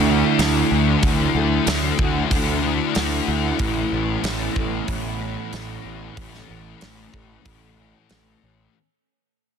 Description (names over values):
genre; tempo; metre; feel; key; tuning
rock, shoegaze and dream pop; 93 BPM; 4/4; straight; unclear; A4 = 439 Hz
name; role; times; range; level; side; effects
fingerpicked twelve-string acoustic guitar; arpeggios; 0.0-8.8 s; E3 to A4; -28 LUFS; right 4 dB; lush chorus, digital delay
direct-recorded clean electric guitar; riff; 0.0-8.8 s; A2 to F#4; -28 LUFS; right 12 dB; reverse reverb
thick fuzz guitar; riff; 0.0-8.7 s; A2 to D4; -24 LUFS; left 13 dB; distortion, ensemble chorus
fuzz picked electric bass; bass; 0.0-8.7 s; A1 to D2; -24 LUFS; right 1 dB; overdrive
big rock drum kit; drums; 0.4-8.3 s; hi-hat, kick drum, snare drum; -26 LUFS; right 1 dB; none
room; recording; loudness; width
small room reverb; dense, heavily limited modern master; -18 LUFS; side -7 dB against mid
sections
0.0-8.7 A section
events
fade-out 0.0-8.7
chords
0.0 Dadd9; 3.6 Aadd9